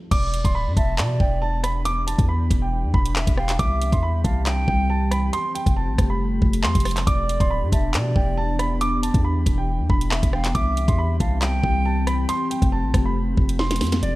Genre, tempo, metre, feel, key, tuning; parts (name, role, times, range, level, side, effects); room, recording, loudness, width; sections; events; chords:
hip hop, drill; 138 BPM; 4/4; half-time; E phrygian; A4 = 440 Hz
dark grand piano; melody; 0.1-14.2 s; D5 to D6; -28 LUFS; right 2 dB; low-pass filter
hollow concert flute; second line; 0.1-14.2 s; D5 to G5; -30 LUFS; right 1 dB; digital delay
glassy FM pad; sustained chords; 0.1-14.2 s; E3 to G4; -29 LUFS; left 1 dB; ensemble chorus, built-in reverb
long sustained 808-style bass; bass; 0.1-14.2 s; D1 to B2; -23 LUFS; equal
drill drum kit; drums; 0.1-14.1 s; crash cymbal, handclaps, hi-hat, kick drum, rim click, snare drum; -22 LUFS; equal
light reverb; -19 LUFS; side -18 dB against mid
0.1-14.0 A section
drum fill 13.6-14.0
0.1 Em7; 3.6 C; 5.3 Fadd9; 7.1 Em7; 10.5 C; 12.3 Fadd9